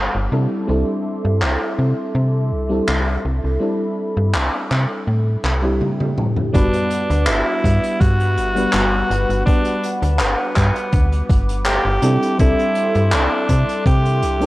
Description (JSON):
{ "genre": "vaporwave", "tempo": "82 BPM", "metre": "4/4", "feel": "straight", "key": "G major", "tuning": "A4 = 440 Hz", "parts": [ { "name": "mellow FM electric piano", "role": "accompaniment", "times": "0.0-14.5 s", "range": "G3 to F#5", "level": "-22 LUFS", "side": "equal", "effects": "lush chorus, cassette tape" }, { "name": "warbly tape-like pad", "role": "sustained chords", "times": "0.0-14.5 s", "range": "G3 to D6", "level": "-30 LUFS", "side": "left 1 dB", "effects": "chorus, built-in reverb, vintage 12-bit sampler grit" }, { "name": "slap-like FM bass", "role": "bass", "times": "0.0-14.5 s", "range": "G1 to C3", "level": "-18 LUFS", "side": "equal", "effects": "none" }, { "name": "unplugged drum kit", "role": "drums", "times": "1.4-14.5 s", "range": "handclaps, hi-hat, toms", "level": "-23 LUFS", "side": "equal", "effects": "low-pass filter on toms, low-pass filter on hats, low-pass filter on snare, low-pass filter on room" }, { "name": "raspy tenor saxophone", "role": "melody", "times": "6.5-14.5 s", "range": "B3 to G4", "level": "-21 LUFS", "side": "equal", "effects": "vintage 12-bit sampler grit, tape echo" }, { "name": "electronic kick drum", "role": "drums", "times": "6.5-14.0 s", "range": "none", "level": "-17 LUFS", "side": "equal", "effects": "none" } ], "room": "light reverb, studio reverb", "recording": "worn, warbling old tape, cassette tape, warbly pitch drift", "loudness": "-16 LUFS", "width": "side -18 dB against mid", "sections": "0.0-6.5 A section; 6.5-14.5 B section", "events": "filter sweep on drum 0.0-6.5; drum fill 5.8-6.5", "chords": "0.3 C69; 6.5 Gmaj7; 12.0 C69" }